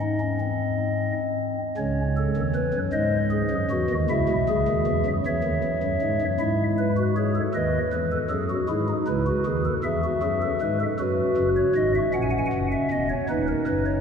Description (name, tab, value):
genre	classical, baroque-style 3-part fugue for pipe organ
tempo	52 BPM (dotted quarters)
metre	6/8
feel	straight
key	C# minor, E major from 6.4 s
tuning	A4 = 440 Hz
part	pipe organ, stopped flute	solo	0.0-14.0 s	D#1 to G#5	-22 LUFS	equal	none
room	wet cathedral reverb, RT60 5.8 s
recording	recorded in a church or concert hall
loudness	-22 LUFS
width	side -6 dB against mid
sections	0.0-1.8 A section; 1.8-6.4 B section; 6.4-14.0 C section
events	none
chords	0.0 G#; 1.8 C#m; 2.9 G#7; 4.1 C#m; 6.4 E/G#; 7.5 B7/D#; 8.7 E; 11.0 B/F#; 12.1 F#7; 13.3 B/D#